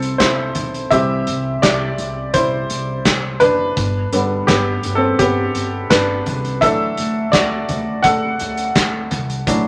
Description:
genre	piano-driven pop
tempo	84 BPM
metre	4/4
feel	straight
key	G major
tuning	A4 = 441 Hz
part	clear upright piano	accompaniment	0.0-9.7 s	D3 to F#5	-20 LUFS	equal	none
part	upright bass	bass	0.0-9.7 s	F#1 to D2	-27 LUFS	equal	none
part	loose indie drum kit	drums	0.0-9.6 s	handclaps, hi-hat, kick drum, snare drum, toms	-22 LUFS	equal	none
room	moderate studio ambience, RT60 0.5 s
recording	none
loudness	-18 LUFS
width	mono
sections	0.0-9.7 A section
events	upright piano solo 0.0-9.7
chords	0.0 Am/C; 0.9 C; 3.8 G; 6.6 Dadd9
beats	0.20 | 0.92 1.63 2.34 3.06 | 3.77 4.48 5.20 5.91 | 6.62 7.33 8.05 8.76 | 9.47

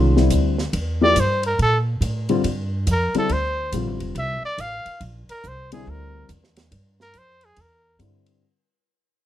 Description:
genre	modal jazz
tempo	141 BPM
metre	4/4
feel	swing 64% on 8ths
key	unclear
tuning	A4 = 440 Hz
part	dark baby grand piano	accompaniment	0.0-8.4 s	D3 to G4	-22 LUFS	left 4 dB	none
part	upright bass	bass	0.0-8.4 s	F1 to Bb2	-23 LUFS	right 1 dB	none
part	compact cocktail drum kit	drums	0.2-8.3 s	hi-hat, ride cymbal, snare drum	-34 LUFS	right 1 dB	none
part	warm trumpet	melody	1.0-8.0 s	Ab4 to F5	-22 LUFS	equal	none
room	little or no reverb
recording	close, detailed microphones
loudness	-19 LUFS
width	side -12 dB against mid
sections	0.0-8.4 A section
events	fade-out 0.0-8.4; trumpet solo 0.0-8.4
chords	0.0 Cadd9; 1.6 Bbmaj9; 5.0 Cadd9/Bb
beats	0.31 0.74 1.17 | 1.59 2.02 2.45 2.87 | 3.30 3.73 4.16 4.58 | 5.01 5.43 5.86 6.29 | 6.71 7.14 7.57 7.99

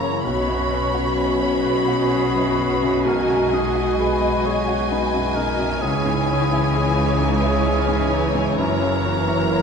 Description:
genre	cinematic, emotional film score for orchestra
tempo	43 BPM (dotted quarters)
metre	6/8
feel	rubato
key	G# minor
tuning	A4 = 442 Hz
part	rich studio violin section	melody	0.0-9.6 s	G#5 to B5	-27 LUFS	left 2 dB	none
part	clear clarinet	second line	0.0-9.6 s	C#4 to G#4	-31 LUFS	left 2 dB	none
part	mellow cor anglais	second line	0.0-9.6 s	G#4 to C#5	-28 LUFS	right 2 dB	none
part	rich symphonic violin section	second line	0.0-9.6 s	C#5 to D#5	-29 LUFS	left 2 dB	none
part	felt-muted upright piano	accompaniment	0.0-9.6 s	B1 to D#5	-27 LUFS	left 3 dB	none
part	warm symphonic viola section	accompaniment	0.0-9.6 s	E3 to F#4	-25 LUFS	right 2 dB	none
part	mellow French horn section	sustained chords	0.0-9.6 s	E3 to F#4	-26 LUFS	left 2 dB	none
part	rich symphonic cello section	bass	0.0-9.6 s	F#2 to C#3	-28 LUFS	equal	none
part	rich symphonic double bass section	bass	0.0-9.6 s	F#1 to C#2	-26 LUFS	right 2 dB	none
room	wet scoring stage reverb, RT60 1.6 s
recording	minimal, uncompressed stereo recording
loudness	-18 LUFS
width	side -6 dB against mid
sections	0.0-9.6 A section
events	none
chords	0.2 Bsus2; 3.1 G#m7/B; 5.8 C#m; 8.6 F#7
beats	| 0.24 1.65 | 3.05 4.45 | 5.82 7.20 | 8.57

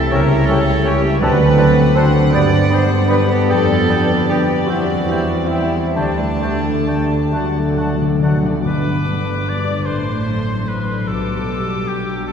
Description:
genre	classical, slow romantic movement for symphony orchestra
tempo	43-55 BPM (dotted quarters)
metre	6/8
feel	rubato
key	G major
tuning	A4 = 442 Hz
part	dark chamber violin section	melody	0.0-12.3 s	A4 to D6	-30 LUFS	left 4 dB	none
part	rich studio violin section	second line	0.0-12.3 s	G4 to A5	-29 LUFS	left 4 dB	none
part	warm chamber viola section	accompaniment	0.0-12.3 s	F#3 to B4	-27 LUFS	right 1 dB	none
part	clear trombone section	sustained chords	0.0-8.3 s	C#3 to G3	-26 LUFS	right 2 dB	none
part	warm French horn section	sustained chords	0.0-8.3 s	A3 to E4	-25 LUFS	left 1 dB	none
part	concert harp	arpeggios	0.0-12.3 s	G2 to D5	-22 LUFS	left 5 dB	none
part	warm studio cello section	bass	0.0-12.3 s	G2 to D5	-22 LUFS	right 2 dB	none
part	clear oboe	second line	0.1-12.3 s	G4 to G5	-29 LUFS	equal	none
part	mellow silver concert flute	second line	0.1-8.3 s	G5 to B5	-29 LUFS	left 1 dB	none
part	warm clarinet	second line	0.1-8.4 s	C#5 to E5	-29 LUFS	left 2 dB	none
part	warm bassoon	accompaniment	0.1-8.4 s	A3 to C#4	-28 LUFS	equal	none
part	dark studio double bass section	bass	0.1-12.3 s	G1 to G2	-20 LUFS	right 2 dB	none
part	timpani	percussion	1.2-2.3, 7.3-9.8 s	G2 to D3	-23 LUFS	equal	none
room	wet cathedral reverb, RT60 4.5 s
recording	dark, warm production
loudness	-14 LUFS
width	side -7 dB against mid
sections	0.0-8.7 A section; 8.7-12.3 B section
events	timpani fill 7.3-8.7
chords	0.1 C#dim7; 1.2 D7; 2.3 G; 3.5 G7/F; 4.7 C/E; 6.0 Dsus4; 7.3 D; 8.7 G; 9.9 D7/A; 11.1 G/B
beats	0.12 | 1.23 2.33 | 3.50 4.70 | 5.95 7.33 | 8.65 9.87 | 11.07 12.27

